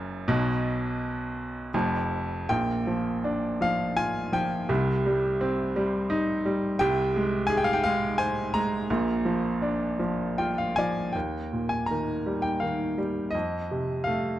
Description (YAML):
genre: classical, lyrical solo piano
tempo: 75-88 BPM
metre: 3/4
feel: rubato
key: Eb major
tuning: A4 = 441 Hz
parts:
  - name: bright baby grand piano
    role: solo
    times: 0.0-14.4 s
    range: E#1 to A#5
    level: -25 LUFS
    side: equal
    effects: none
room: moderate studio reverb, RT60 0.5 s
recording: dark, warm production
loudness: -25 LUFS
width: side -13 dB against mid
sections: 0.0-2.5 A section; 2.5-11.1 B section; 11.1-14.4 C section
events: grand piano fill 10.0-11.1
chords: 0.0 N.C.; 2.5 Bb; 4.7 Cm; 6.8 Abmaj13/C; 8.9 Bb; 11.1 Eb; 13.3 F7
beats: | 0.29 1.00 1.74 | 2.49 3.24 3.97 | 4.70 5.41 6.11 | 6.81 7.50 8.19 | 8.89 9.60 10.37 | 11.15 11.89 12.62 | 13.34 14.07